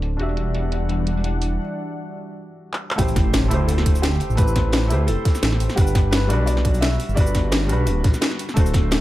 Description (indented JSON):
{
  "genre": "liquid drum and bass",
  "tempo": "172 BPM",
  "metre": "4/4",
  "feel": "swing 54% on 16ths",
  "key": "unclear",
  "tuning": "A4 = 439 Hz",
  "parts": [
    { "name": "felt-muted upright piano", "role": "accompaniment", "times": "0.0-9.0 s", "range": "G3 to F#5", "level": "-28 LUFS", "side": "equal", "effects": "tape echo" },
    { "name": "warm analog pad", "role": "sustained chords", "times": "0.0-3.0 s", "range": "E3 to F#5", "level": "-28 LUFS", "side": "left 2 dB", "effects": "wide subtle chorus, sidechain pumping" },
    { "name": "swelling detuned saw bass", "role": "bass", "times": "0.0-9.0 s", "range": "D1 to D2", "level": "-21 LUFS", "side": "equal", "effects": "tube saturation" },
    { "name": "crunchy breakbeat drum kit", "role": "drums", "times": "0.0-9.0 s", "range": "hi-hat, snare drum", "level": "-35 LUFS", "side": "equal", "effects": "high-pass filter on hats, low-pass filter on hats, small room ambience, high-pass filter on snare, low-pass filter on snare, high-pass filter on room, low-pass filter on room" },
    { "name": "drum and bass drum kit", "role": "drums", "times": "0.0-9.0 s", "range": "cabasa, handclaps, hi-hat, snare drum", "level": "-25 LUFS", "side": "equal", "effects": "overdrive, small room ambience" },
    { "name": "warm baby grand piano", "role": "melody", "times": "3.0-9.0 s", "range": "G4 to E5", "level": "-29 LUFS", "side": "equal", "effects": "digital delay" },
    { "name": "electronic kick drum", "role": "drums", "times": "3.0-8.8 s", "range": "none", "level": "-18 LUFS", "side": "equal", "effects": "overdrive, small room ambience" },
    { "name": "impact", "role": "sound effects", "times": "3.1-4.4 s", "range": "none", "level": "-29 LUFS", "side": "equal", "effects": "none" }
  ],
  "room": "light reverb",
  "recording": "dark, warm production, low-pass filter",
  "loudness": "-18 LUFS",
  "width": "side -15 dB against mid",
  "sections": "0.0-3.0 A section; 3.0-9.0 B section",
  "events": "filter sweep 0.0-3.0; break 1.6-3.0; drum fill 2.7; drop 3.0-9.0; impact 3.0-4.4",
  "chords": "0.2 Em9; 3.0 Am7; 5.8 Gmaj7; 8.4 D7",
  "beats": "| 0.20 0.55 0.90 1.24 | 1.59 1.94 2.29 2.64 | 2.99 3.34 3.69 4.04 | 4.38 4.73 5.08 5.43 | 5.78 6.13 6.48 6.83 | 7.17 7.52 7.87 8.22 | 8.57 8.92"
}